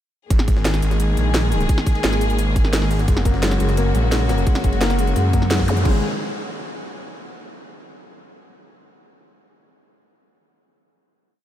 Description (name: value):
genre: dark technical drum and bass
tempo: 173 BPM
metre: 4/4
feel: straight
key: unclear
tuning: A4 = 440 Hz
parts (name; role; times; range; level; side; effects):
- warm studio string section; sustained chords; 0.3-6.0 s; C#3 to G#4; -25 LUFS; left 1 dB; sidechain pumping
- phased detuned saw bass; bass; 0.3-6.0 s; F#1 to F#2; -19 LUFS; equal; phaser, overdrive
- drum and bass drum kit; drums; 0.3-5.9 s; crash cymbal, hi-hat, snare drum; -26 LUFS; equal; none
- electronic kick drum; drums; 0.3-5.9 s; none; -18 LUFS; equal; none
- jungle sampler-style drum kit; drums; 0.3-5.8 s; hi-hat, ride cymbal, snare drum; -36 LUFS; right 1 dB; none
- felt-muted upright piano; arpeggios; 3.1-6.0 s; G#3 to A#3; -27 LUFS; left 4 dB; vintage 12-bit sampler grit, sidechain pumping, tape echo
- zap; sound effects; 5.7-5.8 s; none; -31 LUFS; equal; none
room: light reverb, digital ambience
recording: none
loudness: -16 LUFS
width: side -12 dB against mid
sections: 0.3-5.9 drop; 5.9-7.2 final chord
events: drop 0.3-5.9; band accent 5.5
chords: 0.3 G#sus2; 3.1 F#; 5.9 N.C.